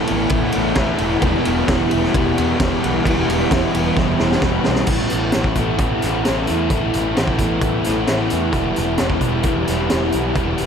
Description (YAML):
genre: rock, shoegaze and dream pop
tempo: 131 BPM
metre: 4/4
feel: straight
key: unclear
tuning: A4 = 440 Hz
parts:
  - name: glassy FM pad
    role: sustained chords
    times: 0.0-10.7 s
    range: E4 to A5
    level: -26 LUFS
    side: equal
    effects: ensemble chorus, built-in reverb
  - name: biting overdriven guitar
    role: riff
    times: 0.0-10.7 s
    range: E2 to E4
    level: -24 LUFS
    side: right 8 dB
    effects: reverse reverb
  - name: overdriven semi-hollow guitar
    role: riff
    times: 0.0-10.7 s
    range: E2 to E4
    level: -22 LUFS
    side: left 7 dB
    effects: wide subtle chorus
  - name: overdriven semi-hollow guitar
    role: riff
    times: 0.0-4.9 s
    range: E2 to A3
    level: -24 LUFS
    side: right 1 dB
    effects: none
  - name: fuzz picked electric bass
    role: bass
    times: 0.1-10.7 s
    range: E1 to E2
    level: -24 LUFS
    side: equal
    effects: overdrive
  - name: raw garage drum kit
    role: drums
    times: 0.1-10.7 s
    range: crash cymbal, hi-hat, kick drum, ride cymbal, snare drum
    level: -21 LUFS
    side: equal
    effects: none
room: moderate huge ambient reverb, RT60 5.4 s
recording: dreamy mix soaked in reverb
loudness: -16 LUFS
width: side -7 dB against mid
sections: 0.0-4.9 A section; 4.9-10.7 B section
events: drum fill 4.0-4.9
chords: 0.0 Asus2; 1.2 Emadd9; 4.9 Asus2; 8.5 Emadd9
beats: 0.32 0.77 | 1.23 1.69 2.14 2.60 | 3.06 3.51 3.97 4.43 | 4.88 5.34 5.80 6.25 | 6.71 7.17 7.62 8.08 | 8.54 8.99 9.45 9.91 | 10.36